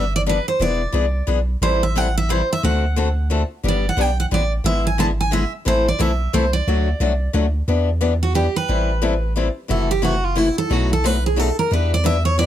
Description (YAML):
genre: acoustic string swing (jazz manouche)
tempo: 178 BPM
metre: 3/4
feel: swing 61% on 8ths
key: E minor from 7.7 s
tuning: A4 = 441 Hz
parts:
  - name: picked steel-string acoustic guitar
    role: melody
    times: 0.0-12.5 s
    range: E4 to A5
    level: -21 LUFS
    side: right 3 dB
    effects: none
  - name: picked steel-string acoustic guitar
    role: accompaniment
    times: 0.0-12.5 s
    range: B2 to A4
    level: -22 LUFS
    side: left 5 dB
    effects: none
  - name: punchy sub bass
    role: bass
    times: 0.0-12.5 s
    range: E1 to E2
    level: -20 LUFS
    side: equal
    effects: none
room: light reverb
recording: close, detailed microphones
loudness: -17 LUFS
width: side -11 dB against mid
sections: 0.0-7.7 A section; 7.7-12.5 B section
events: steel-string acoustic guitar solo 7.7-12.5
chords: 0.0 Gadd9; 0.6 E7; 1.6 Am7; 2.6 D7; 3.6 G; 4.7 E7/G#; 5.7 Am; 6.7 D; 7.7 Em7; 8.7 Am7; 9.7 F#m7b5; 10.7 B7; 11.7 Em7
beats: 0.26 | 0.60 0.94 1.28 | 1.61 1.95 2.29 | 2.63 2.96 3.30 | 3.64 3.98 4.31 | 4.65 4.99 5.32 | 5.66 6.00 6.33 | 6.67 7.00 7.34 | 7.68 8.01 8.35 | 8.69 9.02 9.36 | 9.70 10.03 10.37 | 10.71 11.04 11.38 | 11.72 12.05 12.39